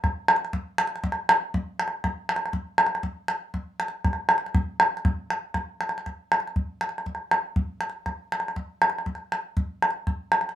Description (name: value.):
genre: west african traditional.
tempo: 120 BPM (dotted quarters).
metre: 12/8.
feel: straight.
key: none.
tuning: none.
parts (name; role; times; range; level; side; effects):
calabash; percussion; 0.0-10.5 s; none; -23 LUFS; equal; none.
room: moderate small room reverb, RT60 0.5 s.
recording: minimal, uncompressed stereo recording.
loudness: -24 LUFS.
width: side -11 dB against mid.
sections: 0.0-6.1 A section; 6.1-10.6 B section.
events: none.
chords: none.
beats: | 0.04 0.54 1.04 1.54 | 2.04 2.54 3.04 3.54 | 4.04 4.55 5.05 5.55 | 6.05 6.56 7.06 7.57 | 8.07 8.57 9.08 9.59 | 10.09.